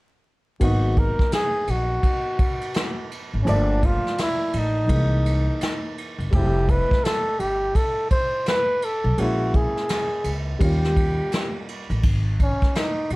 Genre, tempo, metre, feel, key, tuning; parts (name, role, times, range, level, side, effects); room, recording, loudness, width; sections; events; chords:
hip hop, jazz-hop; 84 BPM; 4/4; swing 63% on 16ths; A4 = 442 Hz
breathy flugelhorn; melody; 0.6-13.2 s; C#4 to C5; -24 LUFS; equal
dark upright piano; accompaniment; 0.6-12.0 s; E3 to D5; -30 LUFS; equal
upright bass; bass; 0.6-13.2 s; F1 to D#2; -22 LUFS; equal
vintage brush drum kit; drums; 0.6-13.2 s; crash cymbal, hi-hat, kick drum, ride cymbal, snare drum; -24 LUFS; equal
light reverb; dark, warm production, vinyl crackle; -20 LUFS; side -22 dB against mid
0.6-12.0 A section; 12.0-13.2 B section
flugelhorn solo 12.0-13.2
0.6 G#m9; 3.5 Gm9; 4.9 C7alt; 6.3 Fmaj9; 9.2 A#m7b5; 10.6 D#7; 12.0 G#5